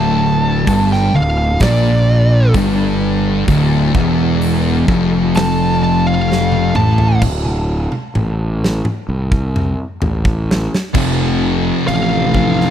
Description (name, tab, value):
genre	stoner and doom metal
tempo	64 BPM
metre	4/4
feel	straight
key	D minor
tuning	A4 = 440 Hz
part	fuzz lead guitar	melody	0.0-12.7 s	D5 to A5	-20 LUFS	right 1 dB	distortion, tape echo
part	thick fuzz guitar	riff	0.0-12.7 s	D2 to F3	-17 LUFS	left 8 dB	distortion
part	thick fuzz guitar	riff	0.0-12.7 s	D2 to F3	-17 LUFS	right 7 dB	distortion
part	fuzz fingered electric bass	bass	0.0-12.6 s	D1 to C2	-18 LUFS	equal	overdrive, tube saturation
part	big rock drum kit	drums	0.7-12.7 s	crash cymbal, hi-hat, kick drum, snare drum, toms	-20 LUFS	equal	none
part	thick fuzz guitar	riff	10.9-12.7 s	F2 to F3	-24 LUFS	equal	distortion
room	small room reverb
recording	dry, close 1970s-style studio recording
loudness	-12 LUFS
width	side -10 dB against mid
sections	0.0-7.2 A section; 7.2-10.9 B section; 10.9-12.7 C section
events	lead electric guitar solo 0.0-7.2; drum fill 6.3-7.2, 7.2-10.9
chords	0.0 Dm; 7.2 D5; 10.9 F